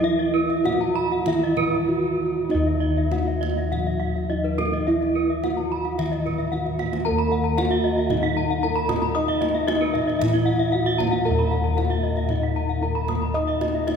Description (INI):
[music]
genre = Balinese gamelan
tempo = 97-114 BPM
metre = 4/4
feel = straight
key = Eb pelog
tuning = A4 = 440 Hz
[part]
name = gamelan-type bronze metallophone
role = melody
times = 0.0-14.0 s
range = Eb4 to Eb5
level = -25 LUFS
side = right 1 dB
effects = none
[part]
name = gamelan-type bronze metallophone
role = accompaniment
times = 0.0-14.0 s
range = Eb3 to Eb4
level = -31 LUFS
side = left 2 dB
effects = none
[part]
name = gamelan-type bronze metallophone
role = arpeggios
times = 0.0-14.0 s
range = Cb5-40c to Eb6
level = -28 LUFS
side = left 3 dB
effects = none
[part]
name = gamelan-type bossed gongs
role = bass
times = 0.0-14.0 s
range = Eb2 to Eb5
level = -25 LUFS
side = left 1 dB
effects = none
[part]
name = gamelan-type bronze metallophone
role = arpeggios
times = 0.3-13.6 s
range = Bb4-45c to Cb6-40c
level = -31 LUFS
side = right 5 dB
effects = none
[part]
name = kendang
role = percussion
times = 0.5-14.0 s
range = none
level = -31 LUFS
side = right 3 dB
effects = none
[sound]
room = wet cathedral reverb, RT60 6.1 s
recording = recorded in a church or concert hall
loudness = -20 LUFS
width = side -6 dB against mid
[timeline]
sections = 0.0-7.1 A section; 7.1-14.0 B section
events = drum fill 6.5-7.1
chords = none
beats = | 0.03 0.65 1.27 1.89 | 2.51 3.12 3.72 4.30 | 4.88 5.44 5.99 6.53 | 7.06 7.58 8.11 8.63 | 9.15 9.68 10.20 10.73 | 11.25 11.78 12.30 12.82 | 13.35 13.87